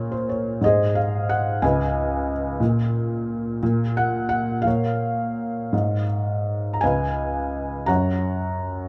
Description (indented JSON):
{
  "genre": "classical, lyrical solo piano",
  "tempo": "55-61 BPM (dotted quarters)",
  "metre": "6/8",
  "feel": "rubato",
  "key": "Db major",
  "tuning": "A4 = 439 Hz",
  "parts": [
    { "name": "felt-muted upright piano", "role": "solo", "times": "0.0-8.9 s", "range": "Db2 to Bb5", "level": "-23 LUFS", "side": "equal", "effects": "none" }
  ],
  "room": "moderate recital hall reverb, RT60 1.6 s",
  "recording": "dark, warm production",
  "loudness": "-23 LUFS",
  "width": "mono",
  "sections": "0.0-8.9 A section",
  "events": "none",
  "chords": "0.0 Bbm; 0.6 Ab; 1.6 Db7; 2.6 N.C.; 4.7 Bbm; 5.7 N.C.; 6.8 Db7; 7.9 Gb"
}